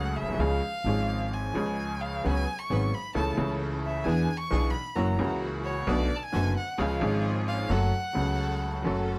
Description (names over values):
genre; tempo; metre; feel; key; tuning
tango; 132 BPM; 4/4; rubato; F# minor; A4 = 440 Hz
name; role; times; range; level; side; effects
rich violin; second line; 0.0-9.1 s; C#5 to C#6; -36 LUFS; equal; none
clear upright piano; accompaniment; 0.0-9.2 s; F#1 to A4; -32 LUFS; equal; none
upright bass; bass; 0.0-9.2 s; F#1 to E2; -32 LUFS; equal; none
clear studio string section; stabs; 2.3-9.2 s; A#3 to B4; -41 LUFS; equal; none
room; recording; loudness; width
light reverb; none; -28 LUFS; mono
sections
0.0-9.2 A section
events
violin solo 0.0-9.2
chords
0.4 C#; 2.3 C#7sus4; 3.2 A/C#; 4.1 E7; 5.0 F#7; 5.9 Bm7; 6.8 C#; 7.7 F#m